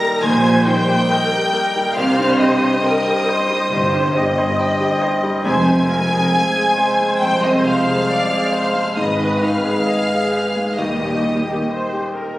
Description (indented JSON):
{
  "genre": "cinematic, emotional film score for orchestra",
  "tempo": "68 BPM",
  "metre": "4/4",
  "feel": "rubato",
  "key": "Eb major",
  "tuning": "A4 = 440 Hz",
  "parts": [
    { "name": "rich studio violin section", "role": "melody", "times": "0.0-11.7 s", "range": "Eb6 to Bb6", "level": "-26 LUFS", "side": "left 1 dB", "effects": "none" },
    { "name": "bright studio violin section", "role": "second line", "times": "0.0-11.7 s", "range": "Eb5 to Bb5", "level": "-23 LUFS", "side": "left 1 dB", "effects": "none" },
    { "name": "mellow hollow small flute group", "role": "second line", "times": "0.0-11.7 s", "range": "Eb5 to Bb5", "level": "-25 LUFS", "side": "equal", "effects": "none" },
    { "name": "bright grand piano", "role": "accompaniment", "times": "0.0-12.4 s", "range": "C2 to G5", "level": "-22 LUFS", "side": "left 1 dB", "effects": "none" },
    { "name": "rich studio viola section", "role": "accompaniment", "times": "0.0-12.4 s", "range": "G4 to Eb5", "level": "-23 LUFS", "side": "equal", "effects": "none" },
    { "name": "mellow French horn section", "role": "sustained chords", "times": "0.0-12.3 s", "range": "G3 to C5", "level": "-23 LUFS", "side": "equal", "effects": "none" },
    { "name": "rich studio cello section", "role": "bass", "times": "0.2-11.6 s", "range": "C2 to C3", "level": "-23 LUFS", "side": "right 1 dB", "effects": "none" },
    { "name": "rich studio double bass section", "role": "bass", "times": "0.2-11.6 s", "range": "F1 to Eb2", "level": "-26 LUFS", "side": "right 1 dB", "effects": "none" }
  ],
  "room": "moderate concert hall reverb, RT60 2.2 s",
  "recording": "recorded on a phone in the room, club reverb, compression",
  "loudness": "-15 LUFS",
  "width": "side -16 dB against mid",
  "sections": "0.0-12.4 A section",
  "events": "none",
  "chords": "0.0 Eb; 2.0 Cm; 5.5 Fm; 9.0 Abm; 10.8 Eb"
}